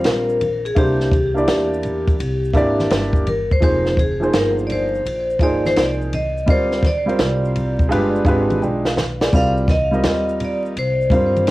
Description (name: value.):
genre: hip hop, jazz-hop.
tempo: 84 BPM.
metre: 4/4.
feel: swing 66% on 16ths.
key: C minor.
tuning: A4 = 440 Hz.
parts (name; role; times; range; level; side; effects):
vibraphone with hard mallets; melody; 0.0-11.5 s; G4 to F5; -21 LUFS; left 1 dB; tape echo.
dark upright piano; accompaniment; 0.0-11.5 s; F3 to G5; -20 LUFS; right 1 dB; none.
upright bass; bass; 0.0-11.5 s; F1 to G2; -24 LUFS; equal; none.
compact cocktail drum kit; drums; 0.0-11.5 s; hi-hat, kick drum, ride cymbal, snare drum, splash cymbal; -19 LUFS; equal; none.
maracas and congas; percussion; 0.1-11.5 s; none; -30 LUFS; left 1 dB; none.
room: moderate studio reverb, RT60 0.5 s.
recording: home recording on cassette, vinyl crackle.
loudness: -16 LUFS.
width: side -18 dB against mid.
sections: 0.0-11.5 A section.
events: drum fill 8.6-9.3.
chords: 0.0 C7(no3); 0.8 C7; 3.6 Fm11; 6.5 C9sus4; 7.9 G7b9; 9.3 Cm7.